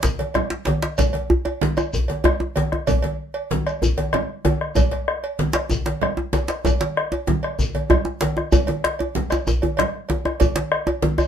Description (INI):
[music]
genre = west african traditional, West African drum ensemble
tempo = 127 BPM (dotted quarters)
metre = 12/8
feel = straight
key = none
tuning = none
[part]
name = bombo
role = percussion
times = 0.0-11.3 s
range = none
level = -24 LUFS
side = left 1 dB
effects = none
[part]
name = djembe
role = percussion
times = 0.0-11.2 s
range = none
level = -27 LUFS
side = left 3 dB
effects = none
[part]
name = djembe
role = percussion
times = 0.0-11.3 s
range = none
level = -22 LUFS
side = equal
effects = none
[part]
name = shekere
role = percussion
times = 0.0-11.3 s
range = none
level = -30 LUFS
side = left 2 dB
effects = none
[part]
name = congas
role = percussion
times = 0.2-11.2 s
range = none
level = -25 LUFS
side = right 3 dB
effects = none
[part]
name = cowbell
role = percussion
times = 0.2-11.3 s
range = none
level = -28 LUFS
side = right 4 dB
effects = none
[sound]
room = moderate studio reverb, RT60 0.5 s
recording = minimal, uncompressed stereo recording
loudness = -19 LUFS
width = side -9 dB against mid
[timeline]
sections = 0.0-11.3 A section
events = none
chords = none